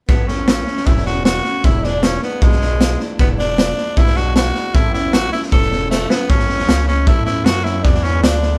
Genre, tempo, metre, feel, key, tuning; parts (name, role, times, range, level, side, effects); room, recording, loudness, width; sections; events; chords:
rockabilly; 155 BPM; 4/4; straight; A major; A4 = 441 Hz
growling tenor saxophone; melody; 0.1-8.6 s; G#3 to A4; -23 LUFS; equal
picked steel-string acoustic guitar; accompaniment; 0.1-8.6 s; E2 to E4; -29 LUFS; equal
gritty driven synth bass; bass; 0.1-8.6 s; E1 to A2; -23 LUFS; equal
raw garage drum kit; drums; 0.1-8.5 s; hi-hat, kick drum, snare drum; -18 LUFS; equal
light reverb; band playing live in one room; -16 LUFS; mono
0.1-6.3 A section; 6.3-8.6 B section
drum fill 5.9-6.3
0.1 A; 1.6 E7; 4.7 A; 7.8 E7